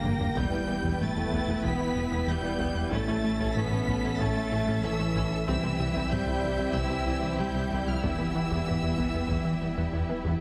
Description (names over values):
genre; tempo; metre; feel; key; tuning
cinematic, hybrid orchestral and electronic film score; 94 BPM; 4/4; straight; E minor; A4 = 440 Hz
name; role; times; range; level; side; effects
rich symphonic violin section; melody; 0.0-10.3 s; E6 to B6; -40 LUFS; equal; none
rich studio violin section; second line; 0.0-10.3 s; G4 to G5; -40 LUFS; equal; none
clear symphonic viola section; accompaniment; 0.0-10.3 s; Bb3 to E4; -41 LUFS; equal; none
dark French horn section; sustained chords; 0.0-10.2 s; E3 to B3; -39 LUFS; equal; none
warm trombone section; sustained chords; 0.0-10.2 s; D3 to C#4; -39 LUFS; equal; none
plucky analog bass; riff; 0.0-10.3 s; C2 to A3; -36 LUFS; equal; none
rich symphonic cello section; bass; 0.0-10.2 s; E3 to B3; -37 LUFS; equal; none
rich symphonic double bass section; bass; 0.0-10.3 s; E1 to E2; -38 LUFS; equal; none
saturated sub bass; bass; 0.0-10.4 s; E1 to C2; -42 LUFS; equal; none
thumb-piano-like synth pluck; arpeggios; 0.1-10.4 s; C3 to A4; -41 LUFS; equal; none
taiko ensemble; drums; 0.1-10.4 s; none; -39 LUFS; equal; none
room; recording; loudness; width
wet concert hall reverb, RT60 2.2 s; heavily compressed radio sound; -28 LUFS; mono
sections
0.0-10.4 A section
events
drum fill 0.0-0.4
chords
0.4 Em; 2.9 A; 5.5 C; 8.0 Em